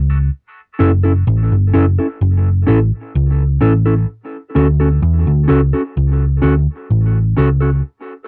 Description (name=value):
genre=dub reggae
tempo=64 BPM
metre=4/4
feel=straight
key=unclear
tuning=A4 = 439 Hz
part: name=hollow-body short-scale picked electric bass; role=bass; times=0.0-7.8 s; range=F#1 to E2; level=-15 LUFS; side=equal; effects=none
part: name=mellow electric guitar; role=accompaniment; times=0.1-7.7 s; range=C#4 to A4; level=-20 LUFS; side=equal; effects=high-pass filter, dub echo
room=little or no reverb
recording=home recording on cassette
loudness=-15 LUFS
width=mono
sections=0.0-8.3 A section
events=filter sweep on clean electric guitar 4.1-8.3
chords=0.3 F#m7; 4.1 Dmaj7